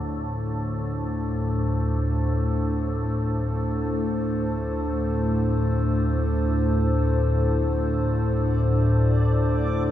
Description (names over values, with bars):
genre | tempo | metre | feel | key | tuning
dark ambient drone | free time | none | none | unclear | A4 = 440 Hz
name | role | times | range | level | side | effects
dark analog pad | sustained chords | 0.0-9.9 s | D4 to C5 | -28 LUFS | equal | chorus
organ-like drone | drone | 0.0-9.9 s | D2 to A2 | -22 LUFS | equal | ensemble chorus, built-in reverb
backwards swelling texture | texture | 8.5-9.9 s | D5 | -35 LUFS | right 1 dB | built-in reverb
room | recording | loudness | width
moderate huge ambient reverb, RT60 7.7 s | small room ambience | -21 LUFS | side -12 dB against mid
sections
0.0-9.9 A section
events
none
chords
0.0 D5